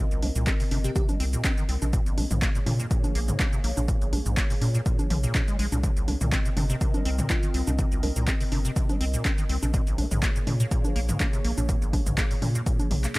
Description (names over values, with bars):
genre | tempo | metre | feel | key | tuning
acid house | 123 BPM | 4/4 | swing 54% on 16ths | unclear | A4 = 440 Hz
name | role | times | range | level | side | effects
bell-like FM electric piano | melody | 0.0-1.0, 7.3-8.2 s | F4 to Bb4 | -38 LUFS | right 1 dB | chorus, analog delay
dark analog pad | sustained chords | 0.0-13.2 s | Bb3 to Eb5 | -37 LUFS | left 1 dB | chorus, phaser, sidechain pumping
deep acid bass | riff | 0.0-13.2 s | Bb1 to C4 | -32 LUFS | equal | ensemble chorus, sidechain pumping, analog delay
punchy analog drum machine | drums | 0.1-13.2 s | congas, handclaps, hi-hat, shaker, toms | -30 LUFS | equal | overdrive
round analog bass | bass | 0.2-13.1 s | G1 to Bb2 | -26 LUFS | equal | tube saturation, sidechain pumping
electronic kick drum | drums | 0.5-12.8 s | none | -26 LUFS | equal | overdrive
room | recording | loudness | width
little or no reverb | dry, gritty hardware recording | -23 LUFS | side -22 dB against mid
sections
0.0-13.2 A section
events
none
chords
0.0 Cm7; 1.9 Bbm7; 5.8 Cm7; 9.7 Bbm7